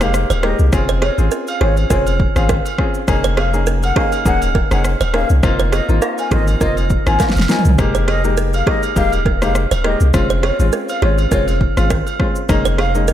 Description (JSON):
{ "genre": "afrobeats", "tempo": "102 BPM", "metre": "4/4", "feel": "swing 55% on 16ths", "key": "unclear", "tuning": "A4 = 440 Hz", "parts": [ { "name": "mellow silver concert flute", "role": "melody", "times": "0.0-12.9 s", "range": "Db5 to Ab5", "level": "-24 LUFS", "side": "left 1 dB", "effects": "ping-pong delay" }, { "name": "clear concert grand piano", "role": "accompaniment", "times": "0.0-13.1 s", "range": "Ab3 to Ab4", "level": "-21 LUFS", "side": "left 4 dB", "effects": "none" }, { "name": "punchy sub bass", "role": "bass", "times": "0.0-13.1 s", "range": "Eb1 to C2", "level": "-17 LUFS", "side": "equal", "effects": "none" }, { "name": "deep house drum kit", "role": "drums", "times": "0.0-13.1 s", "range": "kick drum, rim click, shaker, snare drum, toms", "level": "-19 LUFS", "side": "equal", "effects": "overdrive" }, { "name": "agogo bells and woodblock", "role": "percussion", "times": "0.0-12.9 s", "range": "none", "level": "-26 LUFS", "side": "right 7 dB", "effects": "none" }, { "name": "buzzing kalimba", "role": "riff", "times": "0.3-13.1 s", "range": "Ab4 to C5", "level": "-24 LUFS", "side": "right 6 dB", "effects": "ping-pong delay" } ], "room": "light reverb, small room ambience", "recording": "none", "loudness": "-13 LUFS", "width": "side -11 dB against mid", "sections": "0.0-13.1 A section", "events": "drum fill 7.2-7.8", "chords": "0.0 Fm11; 0.7 Bbm7/F (rootless); 3.1 Eb9sus4; 5.4 Ab69/F; 7.8 Fm11; 10.1 Bbm7/F (rootless); 12.5 Eb9sus4" }